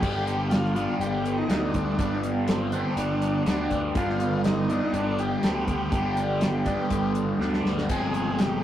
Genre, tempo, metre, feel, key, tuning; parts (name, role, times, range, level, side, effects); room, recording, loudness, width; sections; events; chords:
psychedelic rock; 122 BPM; 4/4; straight; G phrygian dominant; A4 = 444 Hz
overdriven combo organ; melody; 0.0-8.6 s; C4 to Ab4; -30 LUFS; equal
overdriven semi-hollow guitar; riff; 0.0-8.6 s; F2 to D4; -26 LUFS; equal; phaser
fuzz picked electric bass; bass; 0.0-8.6 s; G1 to D2; -30 LUFS; equal; overdrive
damped 70s drum kit; drums; 0.0-8.5 s; crash cymbal, hi-hat, kick drum, snare drum; -28 LUFS; equal
wet small room reverb, RT60 0.6 s; rough rehearsal-room recording, tube saturation; -23 LUFS; side -11 dB against mid
0.0-8.6 A section
drum fill 7.4-7.9
0.0 G; 7.9 Fmadd9/G